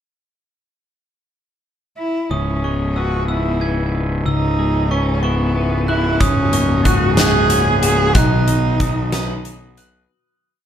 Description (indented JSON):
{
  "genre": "post-rock",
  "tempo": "62 BPM (dotted quarters)",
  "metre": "6/8",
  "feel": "straight",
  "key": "C# dorian",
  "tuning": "A4 = 440 Hz",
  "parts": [
    { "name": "warm cello", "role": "melody", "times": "2.0-9.5 s", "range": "B3 to G#4", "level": "-20 LUFS", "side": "right 1 dB", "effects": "tape echo" },
    { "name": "glockenspiel with hard plastic mallets", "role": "arpeggios", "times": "2.3-10.1 s", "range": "C#6 to G#6", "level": "-26 LUFS", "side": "right 3 dB", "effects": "tape echo" },
    { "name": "twelve-string electric guitar", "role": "arpeggios", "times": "2.3-10.1 s", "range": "C#2 to B4", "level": "-23 LUFS", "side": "left 3 dB", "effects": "tape echo" },
    { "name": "fuzz picked electric bass", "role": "bass", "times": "2.3-10.1 s", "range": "C#1 to B1", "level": "-20 LUFS", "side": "equal", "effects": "overdrive" },
    { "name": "warm analog pad", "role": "sustained chords", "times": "6.2-10.1 s", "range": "C#3 to F#4", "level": "-25 LUFS", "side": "right 1 dB", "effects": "chorus" },
    { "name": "huge arena drum kit", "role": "drums", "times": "6.2-9.9 s", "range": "hi-hat, kick drum, snare drum", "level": "-20 LUFS", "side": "equal", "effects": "none" }
  ],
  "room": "light reverb, small room ambience",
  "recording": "none",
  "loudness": "-15 LUFS",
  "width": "side -9 dB against mid",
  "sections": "0.4-2.3 pickup bar; 2.3-10.1 A section",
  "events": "fade-out 8.2-10.1",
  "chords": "0.4 N.C.; 2.3 C#m7; 6.2 F#add9/C#; 8.2 B"
}